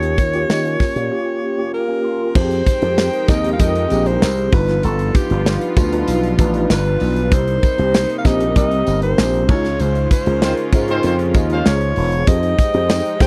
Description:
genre	polished 1980s jazz-funk pop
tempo	97 BPM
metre	4/4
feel	straight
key	F minor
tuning	A4 = 441 Hz
part	breathy alto saxophone	melody	0.0-13.3 s	G4 to G5	-24 LUFS	equal	slapback echo
part	mellow tine electric piano	accompaniment	0.0-13.3 s	Bb3 to C6	-24 LUFS	equal	ensemble chorus
part	slap bass with an envelope filter	bass	0.0-13.3 s	E1 to Eb3	-22 LUFS	equal	none
part	modern studio drum kit	drums	0.0-13.3 s	crash cymbal, hi-hat, kick drum, snare drum	-18 LUFS	equal	none
part	tambourine	percussion	0.2-13.3 s	none	-41 LUFS	equal	none
part	warm studio string section	sustained chords	2.4-13.3 s	C3 to G5	-31 LUFS	equal	none
part	warm horn section	second line	10.4-11.7 s	Ab3 to F5	-27 LUFS	equal	none
room	studio reverb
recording	dry, close 1970s-style studio recording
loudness	-17 LUFS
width	mono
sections	0.0-2.4 A section; 2.4-13.3 B section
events	break 1.1-2.4; tine electric piano fill 1.4-2.4; band accent 9.8-12.3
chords	0.0 Eb9; 2.4 Fm9; 4.5 G7b13; 7.3 Cm7; 9.5 Dbmaj7; 12.3 Fm9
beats	0.49 1.11 1.73 | 2.35 2.97 3.59 4.21 | 4.84 5.46 6.08 6.70 | 7.32 7.94 8.56 9.18 | 9.80 10.42 11.04 11.66 | 12.28 12.90

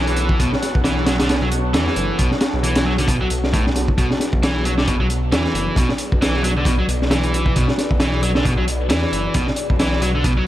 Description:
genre	breakbeat, breaks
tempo	134 BPM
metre	4/4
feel	swing 57% on 16ths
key	B minor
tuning	A4 = 440 Hz
part	deep dark ambient pad	sustained chords	0.0-10.5 s	B3 to F#5	-27 LUFS	equal	chorus, built-in reverb, vintage 12-bit sampler grit, sidechain pumping
part	overdriven electric guitar	riff	0.0-10.4 s	A2 to F#3	-22 LUFS	equal	vintage 12-bit sampler grit, digital delay
part	phased detuned saw bass	bass	0.0-10.4 s	F#1 to E2	-22 LUFS	equal	phaser, tube saturation
part	crunchy breakbeat drum kit	drums	0.1-10.4 s	hi-hat, kick drum, snare drum	-20 LUFS	equal	none
room	studio ambience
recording	vinyl crackle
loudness	-16 LUFS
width	side -14 dB against mid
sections	0.0-10.5 A section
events	none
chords	0.0 Bm7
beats	| 0.39 0.84 1.29 1.74 | 2.19 2.63 3.08 3.53 | 3.98 4.42 4.87 5.32 | 5.77 6.21 6.66 7.11 | 7.56 8.01 8.45 8.90 | 9.35 9.80 10.24

